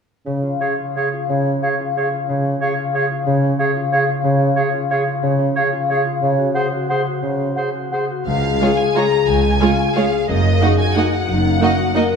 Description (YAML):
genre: classical, orchestral ballroom waltz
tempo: 166-201 BPM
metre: 3/4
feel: rubato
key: Db major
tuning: A4 = 439 Hz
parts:
  - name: warm bassoon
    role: accompaniment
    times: 0.3-7.5 s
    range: Db3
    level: -23 LUFS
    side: right 2 dB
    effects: none
  - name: concert harp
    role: arpeggios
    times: 0.3-12.2 s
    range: Gb2 to Db5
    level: -21 LUFS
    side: left 3 dB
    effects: none
  - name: clear clarinet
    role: second line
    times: 0.6-8.1 s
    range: Ab4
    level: -27 LUFS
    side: right 2 dB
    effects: none
  - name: mellow hollow concert flute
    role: second line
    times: 0.6-8.0 s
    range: F5 to Gb5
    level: -26 LUFS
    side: equal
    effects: none
  - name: warm oboe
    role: second line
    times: 0.6-8.1 s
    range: C5 to Db5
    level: -25 LUFS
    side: right 4 dB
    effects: none
  - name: rich chamber violin section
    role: melody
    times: 8.3-12.2 s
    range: Eb5 to Bb5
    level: -22 LUFS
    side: equal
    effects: none
  - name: mellow French horn section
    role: sustained chords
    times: 8.3-12.2 s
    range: Eb4 to Bb4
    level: -20 LUFS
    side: left 6 dB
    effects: none
  - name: dark chamber double bass section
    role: bass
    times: 8.3-11.6 s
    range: Gb1 to Db2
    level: -22 LUFS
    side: right 4 dB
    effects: none
  - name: warm chamber cello section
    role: bass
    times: 8.3-11.6 s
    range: Db2 to Gb2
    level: -22 LUFS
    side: right 1 dB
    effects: none
  - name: rich studio violin section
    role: second line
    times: 8.6-12.0 s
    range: Gb4 to Eb5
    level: -25 LUFS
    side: equal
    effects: none
  - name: warm studio viola section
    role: accompaniment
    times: 8.6-12.0 s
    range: Ab3 to F4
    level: -21 LUFS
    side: right 5 dB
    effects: none
room: wet concert hall reverb, RT60 2.1 s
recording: minimal, uncompressed stereo recording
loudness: -16 LUFS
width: side -6 dB against mid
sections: 0.3-8.3 A section; 8.3-12.2 B section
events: none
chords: 0.3 Db; 6.2 Ab7/Db; 8.3 Db; 10.3 Ebm/Gb